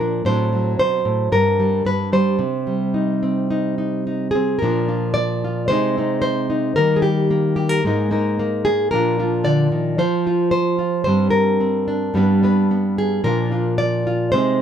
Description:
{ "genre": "folk, solo fingerstyle acoustic guitar", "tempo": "111 BPM", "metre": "4/4", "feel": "straight", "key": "unclear", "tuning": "A4 = 440 Hz", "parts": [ { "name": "nylon-string guitar", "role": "solo", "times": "0.0-14.6 s", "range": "G2 to D5", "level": "-17 LUFS", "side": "equal", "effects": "none" } ], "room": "moderate studio reverb, RT60 0.5 s", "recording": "none", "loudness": "-17 LUFS", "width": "side -8 dB against mid", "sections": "0.0-4.6 A section; 4.6-14.6 B section", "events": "none", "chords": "0.2 D7/A; 1.3 G5; 2.4 Cm; 4.6 Bb; 5.7 Ab/C; 6.8 Eb; 7.8 Absus2; 8.9 Bb; 10.0 N.C.; 11.0 Gsus4; 12.1 G; 13.2 Bb" }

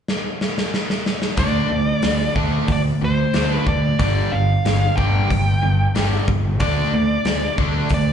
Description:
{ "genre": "hard rock", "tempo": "92 BPM", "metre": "4/4", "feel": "straight", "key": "unclear", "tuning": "A4 = 440 Hz", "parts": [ { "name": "big rock drum kit", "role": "drums", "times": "0.1-8.1 s", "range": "hi-hat, kick drum, snare drum", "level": "-23 LUFS", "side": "equal", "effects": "none" }, { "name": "nasal lead guitar with a parked wah", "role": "melody", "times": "1.4-8.1 s", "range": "C5 to G5", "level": "-24 LUFS", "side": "left 1 dB", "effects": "overdrive, slapback echo" }, { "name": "crunchy overdriven guitar", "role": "riff", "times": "1.4-8.1 s", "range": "G2 to D4", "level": "-26 LUFS", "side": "left 9 dB", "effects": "slapback echo" }, { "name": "crunchy overdriven guitar", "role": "riff", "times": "1.4-8.1 s", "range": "G2 to D4", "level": "-24 LUFS", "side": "right 9 dB", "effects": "none" }, { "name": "fuzz picked electric bass", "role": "bass", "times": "1.4-8.1 s", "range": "G1 to D2", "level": "-21 LUFS", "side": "equal", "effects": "overdrive" } ], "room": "little or no reverb", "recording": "live gig heard through the venue's PA, club reverb, nothing above 10.8 kHz", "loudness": "-17 LUFS", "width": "side -8 dB against mid", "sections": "0.0-1.4 A section; 1.4-8.1 B section", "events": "drum fill 0.1-1.4", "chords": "0.0 N.C.; 1.4 D5; 4.0 G5; 6.6 D5" }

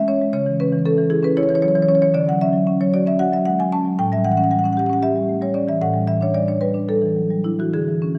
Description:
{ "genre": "classical, contemporary piece for solo marimba", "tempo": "229 BPM (eighths)", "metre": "7/8", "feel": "rubato", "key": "unclear", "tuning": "A4 = 440 Hz", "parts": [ { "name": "marimba with medium mallets", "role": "solo", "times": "0.0-8.2 s", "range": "A2 to A5", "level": "-19 LUFS", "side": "equal", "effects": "none" } ], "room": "wet recital hall reverb, RT60 1.5 s", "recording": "dark, warm production", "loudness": "-19 LUFS", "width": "mono", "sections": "0.0-8.2 A section", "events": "none", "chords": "0.3 C#m; 2.1 Dmaj7; 4.0 A6; 5.8 A7sus4" }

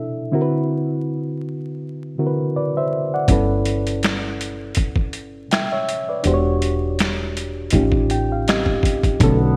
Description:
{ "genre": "R&B, neo-soul", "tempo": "81 BPM", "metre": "4/4", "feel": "swing 54% on 16ths", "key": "unclear", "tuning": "A4 = 439 Hz", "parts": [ { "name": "reed electric piano", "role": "accompaniment", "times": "0.0-9.6 s", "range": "B2 to G5", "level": "-24 LUFS", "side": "equal", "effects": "none" }, { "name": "woody fretless electric bass", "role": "bass", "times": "3.3-9.6 s", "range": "E1 to B1", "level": "-24 LUFS", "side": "equal", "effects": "none" }, { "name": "boom bap sampler-style drum kit", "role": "drums", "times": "3.3-9.4 s", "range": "finger snaps, hi-hat, kick drum, snare drum", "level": "-23 LUFS", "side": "equal", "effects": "overdrive, gated reverb" }, { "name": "clear trombone section", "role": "stabs", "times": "9.2-9.6 s", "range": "F#2 to B3", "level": "-29 LUFS", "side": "equal", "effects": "none" } ], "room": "moderate lush hall reverb, RT60 2.1 s", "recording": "bright 1980s-style digital production, vinyl crackle", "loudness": "-21 LUFS", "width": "mono", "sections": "0.0-9.2 A section", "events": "reed electric piano fill 7.7-9.2", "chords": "0.3 D7; 3.3 G6; 6.2 Em9; 7.7 A7alt" }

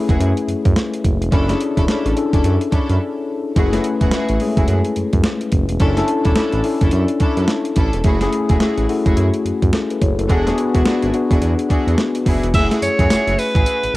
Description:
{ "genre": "R&B, new jack swing", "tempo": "107 BPM", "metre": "4/4", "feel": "swing 61% on 16ths", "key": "F# minor", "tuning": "A4 = 440 Hz", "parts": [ { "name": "mellow tine electric piano", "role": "accompaniment", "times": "0.0-14.0 s", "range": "G#3 to C#5", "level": "-19 LUFS", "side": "left 3 dB", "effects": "wide subtle chorus, cassette tape" }, { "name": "clear studio string section", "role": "stabs", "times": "0.1-13.7 s", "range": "A3 to A4", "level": "-27 LUFS", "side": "right 1 dB", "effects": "cassette tape" }, { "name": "smooth synth bass", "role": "bass", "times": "0.1-14.0 s", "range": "E1 to F#2", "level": "-20 LUFS", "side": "right 1 dB", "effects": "none" }, { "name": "crisp 8-bit digital drum machine", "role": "drums", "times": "0.1-14.0 s", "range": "crash cymbal, hi-hat, kick drum, snare drum, tambourine", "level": "-18 LUFS", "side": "right 1 dB", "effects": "cassette tape" }, { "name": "bright alto saxophone", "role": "melody", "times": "12.5-14.0 s", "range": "B4 to E5", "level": "-18 LUFS", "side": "right 1 dB", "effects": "none" } ], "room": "moderate spring reverb, RT60 1.4 s", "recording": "home recording on cassette", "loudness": "-15 LUFS", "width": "side -18 dB against mid", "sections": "0.0-12.5 A section; 12.5-14.0 B section", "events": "break 3.0-3.6", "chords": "0.0 F#m9; 1.3 Dmaj9#11/E; 3.6 F#m9; 5.8 E13sus4; 8.1 F#m9; 10.3 E9; 12.5 F#m9" }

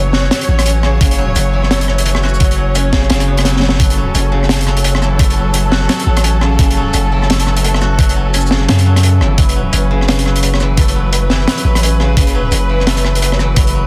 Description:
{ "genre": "half-time drum and bass", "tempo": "172 BPM", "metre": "4/4", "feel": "swing 60% on 16ths, half-time", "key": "F# minor", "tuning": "A4 = 440 Hz", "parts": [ { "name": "muted studio string section", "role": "sustained chords", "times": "0.0-13.9 s", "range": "F#3 to C#5", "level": "-22 LUFS", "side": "equal", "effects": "sidechain pumping" }, { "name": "koto", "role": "arpeggios", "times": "0.0-13.9 s", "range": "C#3 to F#4", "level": "-23 LUFS", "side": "equal", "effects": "tape echo" }, { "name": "long sustained 808-style bass", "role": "bass", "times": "0.0-13.9 s", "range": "F#1 to F#2", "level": "-16 LUFS", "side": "equal", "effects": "none" }, { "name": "crunchy breakbeat drum kit", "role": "drums", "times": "0.1-13.7 s", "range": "hi-hat, rim click, shaker, snare drum", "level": "-19 LUFS", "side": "equal", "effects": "none" }, { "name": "electronic kick drum", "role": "drums", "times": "1.0-13.7 s", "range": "none", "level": "-15 LUFS", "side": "equal", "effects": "none" } ], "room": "small room ambience", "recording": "dense, heavily limited modern master", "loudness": "-13 LUFS", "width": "mono", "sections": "0.0-13.9 A section", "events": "drum fill 3.5-3.8", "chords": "0.0 F#m" }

